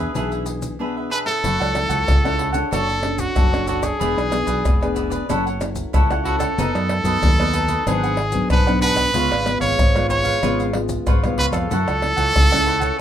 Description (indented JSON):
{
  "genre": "samba and choro",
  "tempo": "93 BPM",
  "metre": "4/4",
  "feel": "straight",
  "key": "F# minor",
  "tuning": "A4 = 440 Hz",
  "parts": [
    { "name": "brilliant trumpet", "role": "melody", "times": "0.0-12.9 s", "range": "F#4 to C#5", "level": "-21 LUFS", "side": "right 2 dB", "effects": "none" },
    { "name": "cavaquinho", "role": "accompaniment", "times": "0.0-13.0 s", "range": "D4 to F#5", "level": "-26 LUFS", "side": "equal", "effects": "none" },
    { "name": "nylon-string guitar", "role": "accompaniment", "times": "0.0-13.0 s", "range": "G#2 to A4", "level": "-25 LUFS", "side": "left 2 dB", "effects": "none" },
    { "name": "fingered electric bass", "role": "bass", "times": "0.0-12.9 s", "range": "E1 to F#2", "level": "-25 LUFS", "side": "right 1 dB", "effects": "none" },
    { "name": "maracas, surdo, pandeiro and tamborim", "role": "percussion", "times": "0.2-13.0 s", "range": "none", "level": "-22 LUFS", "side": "equal", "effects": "none" }
  ],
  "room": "moderate studio ambience, RT60 0.5 s",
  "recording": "minimal, uncompressed stereo recording",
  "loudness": "-17 LUFS",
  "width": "side -10 dB against mid",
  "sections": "0.0-1.4 A section; 1.4-13.0 B section",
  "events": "none",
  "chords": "0.0 E7; 1.4 F#m7; 2.7 Dmaj7/F#; 4.0 E7; 5.3 F#m7; 6.6 B7/F#; 7.9 G#m7b5; 9.1 C#7; 11.7 F#m7"
}